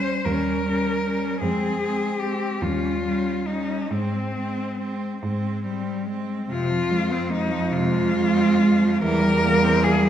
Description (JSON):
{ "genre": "classical, lyrical piece for cello ensemble", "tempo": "47 BPM (dotted quarters)", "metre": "6/8", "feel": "uneven beats, rubato", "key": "Ab major, F minor from 6.5 s", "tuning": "A4 = 440 Hz", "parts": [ { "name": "clear cello", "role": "melody", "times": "0.0-10.1 s", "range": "C4 to C5", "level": "-25 LUFS", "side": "left 3 dB", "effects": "none" }, { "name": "rich cello", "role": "second line", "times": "0.0-10.1 s", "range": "G3 to Db4", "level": "-25 LUFS", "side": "right 4 dB", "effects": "none" }, { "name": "rich cello", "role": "accompaniment", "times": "0.0-10.1 s", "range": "C3 to C4", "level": "-27 LUFS", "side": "left 1 dB", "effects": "none" }, { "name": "clear cello", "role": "bass", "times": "0.0-10.1 s", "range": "Eb2 to Ab2", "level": "-27 LUFS", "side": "right 2 dB", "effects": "none" } ], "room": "wet recital hall reverb, RT60 1.5 s", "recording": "recorded in a church or concert hall", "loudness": "-20 LUFS", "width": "side -10 dB against mid", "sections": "0.0-6.5 A section; 6.5-10.1 B section", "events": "none", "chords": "0.0 Eb7; 1.4 Fm; 2.6 Eb7; 3.9 Ab; 6.5 Fm; 9.0 C7/E", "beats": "0.26 | 1.42 2.63 | 3.92 5.22 | 6.51 7.73 | 9.02" }